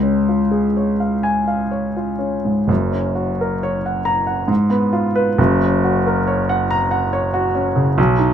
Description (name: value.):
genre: classical, romantic character piece for solo piano.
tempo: 60-72 BPM.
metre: 3/4.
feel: rubato.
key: F# major.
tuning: A4 = 440 Hz.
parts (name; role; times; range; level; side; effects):
warm grand piano; solo; 0.0-8.3 s; F#1 to A#5; -16 LUFS; equal; none.
room: moderate studio ambience, RT60 0.5 s.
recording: minimal, uncompressed stereo recording.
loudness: -16 LUFS.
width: side -9 dB against mid.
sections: 0.0-8.3 A section.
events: none.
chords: 0.0 C#; 2.7 F#; 4.5 Fdim/Ab; 5.4 F#.